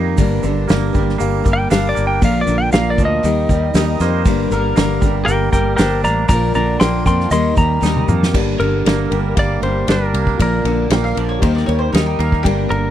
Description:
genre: folk rock and heartland rock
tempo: 117 BPM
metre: 4/4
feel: straight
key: G minor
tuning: A4 = 440 Hz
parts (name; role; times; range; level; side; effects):
- dark upright piano; accompaniment; 0.0-12.9 s; F4 to F5; -27 LUFS; left 9 dB; none
- picked steel-string acoustic guitar; accompaniment; 0.0-12.9 s; G2 to Bb4; -23 LUFS; left 9 dB; none
- twangy electric guitar; riff; 0.0-12.9 s; G2 to Eb4; -23 LUFS; right 12 dB; harmonic tremolo
- fingered electric bass; bass; 0.0-12.9 s; G1 to F2; -19 LUFS; equal; none
- unplugged drum kit; drums; 0.2-12.8 s; crash cymbal, hi-hat, kick drum, ride cymbal, snare drum, toms; -17 LUFS; equal; none
- tube shaker; percussion; 0.2-8.2 s; none; -34 LUFS; right 9 dB; none
- clean lap steel guitar; melody; 1.5-12.9 s; Bb4 to C6; -20 LUFS; equal; none
- bowl-back mandolin; second line; 4.0-5.1, 10.9-12.7 s; G4 to G5; -25 LUFS; equal; none
room: little or no reverb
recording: dry, close 1970s-style studio recording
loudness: -13 LUFS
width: side -11 dB against mid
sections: 0.0-8.3 A section; 8.3-12.9 B section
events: electric slide guitar solo 0.0-8.3; drum fill 7.8-8.3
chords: 0.2 Gm; 2.2 Bb; 3.2 Eb; 4.3 Gm; 6.3 Bb; 7.3 Eb; 8.3 Gm; 10.4 Bb; 11.4 Eb

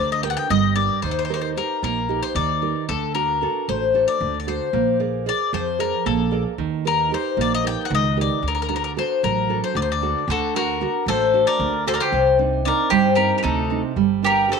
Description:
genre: greek folk, Greek bouzouki band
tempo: 227 BPM (eighths)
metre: 7/8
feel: straight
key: D phrygian dominant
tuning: A4 = 440 Hz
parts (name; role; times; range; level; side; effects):
- Greek bouzouki; melody; 0.0-14.6 s; A4 to G5; -21 LUFS; left 8 dB; tape echo
- nylon-string guitar; accompaniment; 0.0-14.6 s; C3 to D5; -24 LUFS; right 15 dB; none
- upright bass; bass; 0.0-14.5 s; G1 to G2; -27 LUFS; right 1 dB; none
- mandolin; second line; 10.3-14.6 s; Eb4 to Bb4; -23 LUFS; right 4 dB; none
room: moderate spring reverb, RT60 1.1 s, studio reverb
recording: 1960s-style stereo with parts hard left and right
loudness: -18 LUFS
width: side -5 dB against mid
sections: 0.0-10.3 A section; 10.3-14.6 A section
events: none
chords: 0.0 Gm; 1.0 Eb; 2.9 D; 4.7 Bb7; 6.6 Eb; 8.4 D; 12.1 Cmadd9; 14.0 Gm

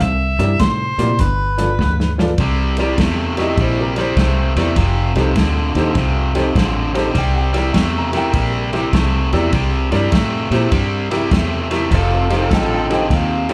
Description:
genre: electric blues shuffle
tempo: 101 BPM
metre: 4/4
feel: swing 66% on 8ths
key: C mixolydian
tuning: A4 = 442 Hz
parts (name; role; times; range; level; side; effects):
- mellow harmonica; melody; 0.0-2.2 s; B4 to E5; -23 LUFS; equal; overdrive
- cranked stack guitar; riff; 0.0-13.5 s; F2 to A3; -23 LUFS; equal; overdrive
- fingered electric bass; bass; 0.0-13.5 s; F1 to Bb2; -22 LUFS; equal; none
- warm soul drum kit; drums; 0.0-13.5 s; hi-hat, kick drum, ride cymbal, snare drum; -23 LUFS; equal; none
- clear concert grand piano; accompaniment; 0.4-13.5 s; Eb4 to Bb5; -24 LUFS; equal; none
- brilliant horn section; stabs; 11.9-13.5 s; Eb4 to A4; -26 LUFS; equal; none
room: moderate large studio reverb, RT60 0.7 s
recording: band playing live in one room, faint mains hum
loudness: -17 LUFS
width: mono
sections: 0.0-2.4 A section; 2.4-13.5 B section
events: drum fill 1.8-2.4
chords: 0.0 C7; 1.2 G7; 2.4 C7; 4.8 F7; 7.2 C7; 11.9 F7

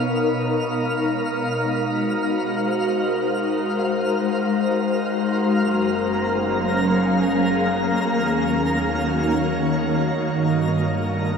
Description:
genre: ambient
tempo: free time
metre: none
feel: none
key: unclear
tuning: A4 = 440 Hz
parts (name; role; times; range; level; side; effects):
- glassy FM pad; sustained chords; 0.0-11.4 s; B2 to F5; -20 LUFS; left 1 dB; ensemble chorus, built-in reverb, phaser
- twinkling granular texture; texture; 0.0-11.4 s; Bb3 to F6; -26 LUFS; equal; built-in reverb
- clear studio double bass section; bass; 5.5-11.4 s; Gb1 to G2; -32 LUFS; equal; none
room: wet shimmer reverb, RT60 7.9 s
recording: dark, warm production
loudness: -19 LUFS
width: side -6 dB against mid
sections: 0.0-5.5 A section; 5.5-11.4 B section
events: fade-in on double bass section 5.5-11.4; fade-out on synth texture 5.5-11.4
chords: 0.0 Bmaj7; 0.7 Ab7; 5.5 Gbmaj7; 8.0 Ebm7; 10.4 Gm7

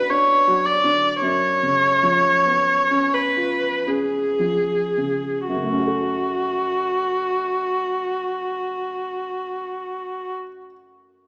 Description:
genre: classical, romantic duo for viola and grand piano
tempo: 35-57 BPM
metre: 3/4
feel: rubato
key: F# minor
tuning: A4 = 440 Hz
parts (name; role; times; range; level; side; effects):
- clear viola; melody; 0.0-10.3 s; F#4 to D5; -22 LUFS; equal; none
- warm baby grand piano; accompaniment; 0.0-11.3 s; F#2 to A4; -28 LUFS; equal; none
room: wet recital hall reverb, RT60 1.7 s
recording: recorded in a church or concert hall, small speaker sound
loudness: -21 LUFS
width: mono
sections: 0.0-5.5 A section; 5.5-10.0 B section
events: slowing down 0.0-5.5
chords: 0.0 Bm/F#; 1.2 C#7/F#; 5.5 F#m

